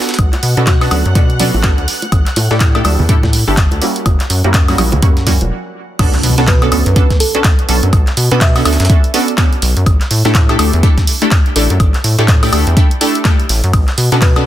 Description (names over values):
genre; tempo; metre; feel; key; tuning
deep house; 124 BPM; 4/4; swing 59% on 16ths; B minor; A4 = 440 Hz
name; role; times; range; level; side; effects
filtered dub chord stab; stabs; 0.0-14.4 s; G3 to A4; -17 LUFS; right 1 dB; lush chorus, sidechain pumping, dub echo
breakbeat sampler-style drum kit; drums; 0.0-14.4 s; hi-hat, snare drum; -26 LUFS; right 1 dB; none
string machine, violins; texture; 0.0-5.5 s; F#5 to F#6; -28 LUFS; left 1 dB; ensemble chorus, sidechain pumping
punchy analog drum machine; drums; 0.1-14.4 s; crash cymbal, handclaps, hi-hat, ride cymbal, woodblock; -18 LUFS; equal; none
rubbery square bass; bass; 0.2-14.4 s; E1 to B2; -14 LUFS; equal; sidechain pumping
electronic kick drum; drums; 0.2-14.3 s; none; -11 LUFS; equal; none
bongos and congas; percussion; 0.3-5.5 s; none; -22 LUFS; right 2 dB; none
bell-like FM electric piano; melody; 0.7-1.1, 6.5-9.1, 14.2-14.5 s; F#4 to E5; -22 LUFS; right 1 dB; chorus, dub echo
impact; sound effects; 6.0-7.9 s; none; -21 LUFS; equal; none
room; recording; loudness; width
digital ambience; dense, heavily limited modern master; -10 LUFS; side -13 dB against mid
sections
0.0-6.0 A section; 6.0-14.5 B section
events
break 5.5-6.0; drop 6.0-14.5; impact 6.0-7.9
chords
0.0 Bm9; 2.1 A7sus4; 4.1 F#7b9; 6.0 Bm9; 9.9 A7sus4; 13.7 Bm9